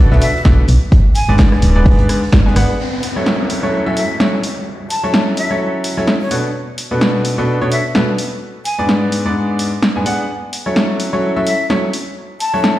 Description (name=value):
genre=piano house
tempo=128 BPM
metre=4/4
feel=swing 57% on 16ths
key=F# minor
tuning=A4 = 440 Hz
part: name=clear grand piano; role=riff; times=0.0-12.8 s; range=G#2 to G#5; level=-17 LUFS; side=equal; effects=sidechain pumping, dub echo
part: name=solid FM bass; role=bass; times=0.0-2.7 s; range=D1 to B1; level=-13 LUFS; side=equal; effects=tube saturation, sidechain pumping
part: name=warm soul drum kit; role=drums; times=0.1-2.8 s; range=hi-hat, snare drum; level=-34 LUFS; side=right 2 dB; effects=high-pass filter on hats, high-pass filter on snare, high-pass filter on room
part: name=breathy jazz flute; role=melody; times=0.2-12.6 s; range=C#5 to A5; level=-23 LUFS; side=left 1 dB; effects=dub echo
part: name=punchy analog drum machine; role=drums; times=0.2-12.7 s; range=hi-hat, rim click, snare drum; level=-18 LUFS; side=equal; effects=none
part: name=electronic kick drum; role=drums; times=0.5-2.4 s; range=none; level=-10 LUFS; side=equal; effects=none
part: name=downlifter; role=sound effects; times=2.8-6.5 s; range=none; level=-25 LUFS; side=equal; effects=none
room=moderate lush hall reverb, RT60 1.5 s, small room reverb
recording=played on a big sound system in a bare room, large studio reverb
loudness=-13 LUFS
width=side -15 dB against mid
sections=0.0-2.8 A section; 2.8-12.8 B section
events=none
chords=0.0 Bm7; 0.9 G#dim; 2.8 F#m7; 6.3 Bm7; 8.4 G#dim; 10.3 F#m7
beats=0.45 | 0.92 1.39 1.86 2.33 | 2.79 3.26 3.73 4.20 | 4.67 5.14 5.61 6.08 | 6.54 7.01 7.48 7.95 | 8.42 8.89 9.36 9.83 | 10.29 10.76 11.23 11.70 | 12.17 12.64